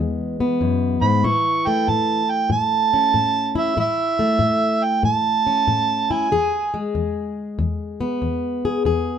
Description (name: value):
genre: acoustic country blues, solo or duo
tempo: 94 BPM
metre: 4/4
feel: swing 66% on 8ths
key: unclear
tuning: A4 = 440 Hz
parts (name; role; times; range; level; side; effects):
- fingerpicked plugged-in steel-string acoustic guitar; accompaniment; 0.0-9.2 s; E2 to G#4; -21 LUFS; left 3 dB; none
- overdriven harmonica; melody; 1.0-6.7 s; E5 to C#6; -19 LUFS; right 5 dB; none
room: moderate small room reverb, RT60 0.5 s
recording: close, detailed microphones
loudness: -18 LUFS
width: side -8 dB against mid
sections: 0.0-9.2 A section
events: none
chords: 0.0 E; 1.2 A; 6.3 E